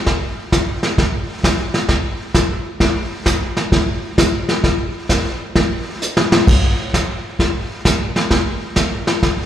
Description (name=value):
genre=country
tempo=131 BPM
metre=4/4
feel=swing 66% on 8ths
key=none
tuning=none
part: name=vintage brush drum kit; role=drums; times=0.1-9.5 s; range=brushed snare drum, crash cymbal, hi-hat, kick drum, snare drum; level=-15 LUFS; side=equal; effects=slapback echo
room=moderate lush hall reverb, RT60 1.9 s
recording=live gig heard through the venue's PA, club reverb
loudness=-15 LUFS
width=side -10 dB against mid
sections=0.0-9.5 A section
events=drum fill 6.0-6.5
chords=none